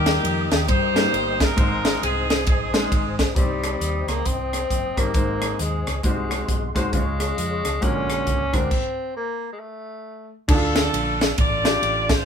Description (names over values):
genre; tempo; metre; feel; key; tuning
uptempo gospel; 135 BPM; 4/4; swing 62% on 8ths; Ab major; A4 = 440 Hz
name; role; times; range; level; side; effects
clear horn section; melody; 0.0-3.3, 10.5-12.2 s; Bb3 to D5; -24 LUFS; left 1 dB; none
clear grand piano; accompaniment; 0.0-12.1 s; Ab2 to Db5; -27 LUFS; left 1 dB; none
mellow tonewheel organ; sustained chords; 0.0-8.7 s; Ab4 to Eb6; -32 LUFS; equal; slow rotary speaker, chorus vibrato
hollow-body short-scale fingered electric bass; bass; 0.0-12.2 s; Gb1 to G2; -28 LUFS; equal; none
crisp fusion drum kit; drums; 0.1-12.2 s; crash cymbal, hi-hat, kick drum, ride cymbal, rim click, snare drum; -22 LUFS; equal; none
breathy tenor saxophone; melody; 3.4-10.3 s; G3 to C#4; -27 LUFS; left 2 dB; none
room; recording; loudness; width
moderate studio reverb, RT60 0.6 s; band playing live in one room; -19 LUFS; side -7 dB against mid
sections
0.0-3.4 A section; 3.4-10.5 B section; 10.5-12.2 A section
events
stop 8.7-10.5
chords
0.0 Eb; 1.6 Ab; 3.4 Cm; 5.1 Ab; 6.0 Ab7/C; 6.9 Db; 7.8 Bb7alt; 8.7 N.C.; 10.5 Dm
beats
0.24 0.68 1.13 | 1.57 2.02 2.46 2.91 | 3.35 3.80 4.25 4.69 | 5.14 5.59 6.03 6.48 | 6.93 7.37 7.82 8.27 | 8.71 9.16 9.60 10.05 | 10.49 10.93 11.38 11.82